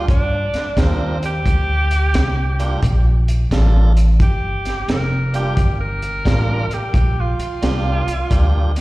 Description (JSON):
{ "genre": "electric blues shuffle", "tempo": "88 BPM", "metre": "4/4", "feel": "swing 66% on 8ths", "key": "G minor", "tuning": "A4 = 440 Hz", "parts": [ { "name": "breathy tenor saxophone", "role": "second line", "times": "0.0-8.7 s", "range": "C4 to Bb4", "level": "-24 LUFS", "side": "right 2 dB", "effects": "slapback echo, tape echo" }, { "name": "tonewheel organ", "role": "accompaniment", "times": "0.0-8.7 s", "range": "G3 to Bb4", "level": "-26 LUFS", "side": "right 2 dB", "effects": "overdrive, slapback echo" }, { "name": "upright bass", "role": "bass", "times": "0.0-8.8 s", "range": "F1 to G2", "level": "-17 LUFS", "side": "equal", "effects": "none" }, { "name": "crunchy breakbeat drum kit", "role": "drums", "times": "0.1-8.8 s", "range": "hi-hat, kick drum, snare drum", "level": "-20 LUFS", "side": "equal", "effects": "none" } ], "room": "little or no reverb", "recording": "live gig heard through the venue's PA, recital hall reverb", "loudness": "-15 LUFS", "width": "side -19 dB against mid", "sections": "0.0-8.8 A section", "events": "tenor saxophone solo 0.0-8.8", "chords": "0.0 Gm7" }